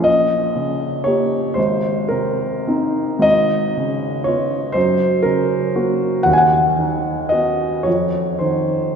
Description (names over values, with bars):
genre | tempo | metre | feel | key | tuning
classical, romantic nocturne for solo piano | 34-41 BPM (dotted quarters) | 6/8 | rubato | unclear | A4 = 440 Hz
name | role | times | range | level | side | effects
clear upright piano | solo | 0.0-9.0 s | Ab1 to Ab5 | -15 LUFS | equal | none
room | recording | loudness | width
wet cathedral reverb, RT60 5.0 s | recorded in a church or concert hall | -16 LUFS | side -6 dB against mid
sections
0.0-9.0 A section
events
none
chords
0.1 Eb7/Bb; 1.6 Ab; 3.2 Db7/Ab; 4.8 Gb; 6.3 B/D#; 7.9 F7(no3)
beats
| 0.07 1.57 | 3.25 4.75 | 6.27 7.86